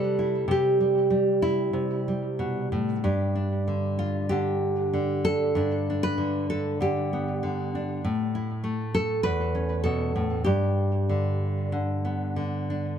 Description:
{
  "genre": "folk, solo fingerstyle acoustic guitar",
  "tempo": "96 BPM",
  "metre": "4/4",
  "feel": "rubato",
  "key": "G mixolydian",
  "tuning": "A4 = 440 Hz",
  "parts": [
    { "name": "nylon-string guitar", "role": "solo", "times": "0.0-13.0 s", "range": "E2 to B4", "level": "-24 LUFS", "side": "equal", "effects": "tape echo" }
  ],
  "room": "light reverb",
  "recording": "dark, warm production",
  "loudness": "-24 LUFS",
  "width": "side -8 dB against mid",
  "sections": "0.0-13.0 A section",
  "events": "none",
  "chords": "0.0 C6; 3.0 G; 8.0 Aadd9; 10.5 G"
}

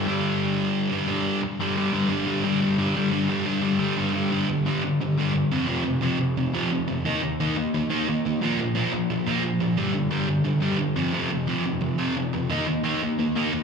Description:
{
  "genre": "punk",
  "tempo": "176 BPM",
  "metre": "4/4",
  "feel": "straight",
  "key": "G minor from 4.3 s",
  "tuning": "A4 = 439 Hz",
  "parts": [
    { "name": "sludgy distorted guitar", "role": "solo", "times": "0.0-13.6 s", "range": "F2 to Eb4", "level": "-22 LUFS", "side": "equal", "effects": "overdrive, slapback echo, digital delay" }
  ],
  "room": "digital ambience",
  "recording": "live gig heard through the venue's PA, club reverb",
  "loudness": "-22 LUFS",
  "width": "side -6 dB against mid",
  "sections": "0.0-1.6 A section; 1.6-4.3 B section; 4.3-13.6 C section",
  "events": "none",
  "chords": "0.0 G5; 5.5 F5; 7.0 Eb5; 8.4 Bb5; 9.8 G5; 11.0 F5; 12.5 Eb5"
}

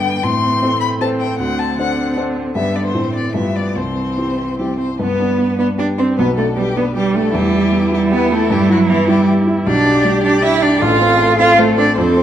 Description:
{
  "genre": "quick classical-period movement for piano quartet",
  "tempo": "155 BPM",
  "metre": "3/4",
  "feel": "rubato",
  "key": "C major, G major from 5.0 s",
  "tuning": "A4 = 440 Hz",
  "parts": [
    { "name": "rich violin", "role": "melody", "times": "0.0-12.2 s", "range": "E4 to C6", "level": "-21 LUFS", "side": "left 6 dB", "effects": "none" },
    { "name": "rich cello", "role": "second line", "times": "0.0-12.2 s", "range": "D3 to F4", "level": "-17 LUFS", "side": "right 3 dB", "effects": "none" },
    { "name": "warm baby grand piano", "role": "accompaniment", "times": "0.0-12.2 s", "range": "A1 to D5", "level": "-18 LUFS", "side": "left 1 dB", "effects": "none" },
    { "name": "warm viola", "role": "accompaniment", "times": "0.0-12.2 s", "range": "G3 to A4", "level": "-21 LUFS", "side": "right 1 dB", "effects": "none" }
  ],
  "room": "wet recital hall reverb, RT60 1.5 s",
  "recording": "dark, warm production",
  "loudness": "-13 LUFS",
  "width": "side -10 dB against mid",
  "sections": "0.0-5.0 A section; 5.0-12.2 B section",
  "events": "none",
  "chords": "0.2 Am; 1.4 D7; 2.6 G; 3.0 Am; 3.4 G7; 3.8 C; 5.0 G; 6.2 G/B; 7.4 Em; 8.5 Em/G; 9.7 G/B; 10.8 F/A"
}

